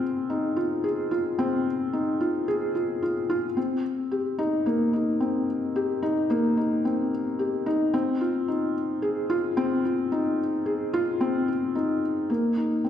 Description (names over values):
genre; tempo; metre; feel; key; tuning
electronica; 110 BPM; 4/4; straight; unclear; A4 = 440 Hz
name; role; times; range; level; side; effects
felt-muted upright piano; solo; 0.0-12.9 s; Bb3 to Ab4; -23 LUFS; left 1 dB; none
room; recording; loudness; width
wet recital hall reverb, RT60 1.5 s; none; -23 LUFS; side -9 dB against mid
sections
0.0-12.3 A section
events
none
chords
none